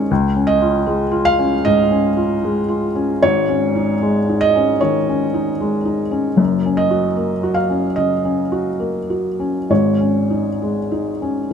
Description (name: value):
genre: neoclassical minimalist piano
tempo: 75 BPM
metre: 4/4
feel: uneven beats, rubato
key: unclear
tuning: A4 = 440 Hz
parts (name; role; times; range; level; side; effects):
- felt-muted upright piano; solo; 0.0-11.5 s; Gb1 to F5; -15 LUFS; equal; none
room: light reverb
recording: close, detailed microphones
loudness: -15 LUFS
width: side -7 dB against mid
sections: 0.0-11.5 A section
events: none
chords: 0.1 Dbadd9; 3.2 Absus4; 6.4 Gb; 9.7 Absus4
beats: | 0.10 0.87 1.66 2.44 | 3.23 4.03 4.82 5.60 | 6.39 7.17 7.96 8.80 | 9.70 10.61 11.51